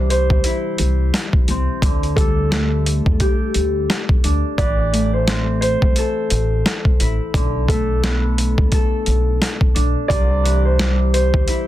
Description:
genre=hip hop, boom-bap hip-hop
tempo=87 BPM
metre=4/4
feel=swing 60% on 16ths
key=unclear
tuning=A4 = 437 Hz
part: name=warm upright piano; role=melody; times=0.0-11.7 s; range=A4 to D5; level=-24 LUFS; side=right 2 dB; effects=high-pass filter, low-pass filter, digital delay
part: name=Celtic harp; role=accompaniment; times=0.0-11.7 s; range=C3 to A4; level=-23 LUFS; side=left 2 dB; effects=high-pass filter, low-pass filter
part: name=upright bass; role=bass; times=0.0-11.5 s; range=A1 to E2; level=-19 LUFS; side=equal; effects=none
part: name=boom bap sampler-style drum kit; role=drums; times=0.1-11.7 s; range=hi-hat, kick drum, snare drum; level=-18 LUFS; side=equal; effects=none
room=little or no reverb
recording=dense, heavily limited modern master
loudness=-15 LUFS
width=side -14 dB against mid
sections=0.0-11.7 A section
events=none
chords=0.0 C; 1.8 Dsus4; 4.6 Am; 7.3 Bm7; 10.1 C

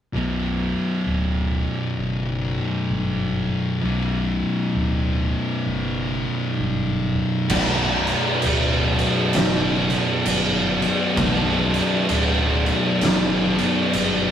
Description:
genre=stoner and doom metal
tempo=65 BPM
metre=4/4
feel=swing 62% on 8ths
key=B minor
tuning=A4 = 439 Hz
part: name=thick fuzz guitar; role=riff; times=0.1-14.3 s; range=B1 to B2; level=-25 LUFS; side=left 4 dB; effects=distortion
part: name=thick fuzz guitar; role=riff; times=0.1-14.3 s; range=B1 to B2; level=-26 LUFS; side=right 3 dB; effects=distortion
part: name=fingered electric bass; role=bass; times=0.1-14.3 s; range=B0 to G1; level=-27 LUFS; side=equal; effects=overdrive
part: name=thick fuzz guitar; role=riff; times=7.5-14.3 s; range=B1 to D4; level=-23 LUFS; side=equal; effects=distortion
part: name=oversized low-tuned drum kit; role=drums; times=7.5-14.2 s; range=crash cymbal, kick drum, snare drum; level=-21 LUFS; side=right 1 dB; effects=none
room=wet small room reverb, RT60 0.5 s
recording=rough rehearsal-room recording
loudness=-19 LUFS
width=side -9 dB against mid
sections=0.1-7.5 A section; 7.5-14.3 B section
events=none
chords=0.1 Bm

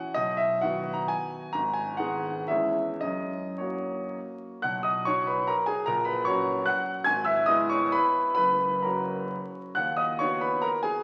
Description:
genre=classical, romantic triple-time dance for piano with dotted rhythms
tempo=103-158 BPM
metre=3/4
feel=rubato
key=B major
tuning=A4 = 442 Hz
part: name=clear concert grand piano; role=solo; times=0.0-11.0 s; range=F#1 to G#6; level=-27 LUFS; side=equal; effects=none
room=wet recital hall reverb, RT60 1.8 s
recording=very old 78 rpm record, vinyl crackle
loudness=-27 LUFS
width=mono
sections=0.0-4.6 A section; 4.6-11.0 B section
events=none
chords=0.2 B; 1.5 G#m; 2.5 C#m/E; 3.0 F#; 4.6 B; 5.9 F#/A#; 7.1 E/G#; 8.4 F#; 9.8 B/D#

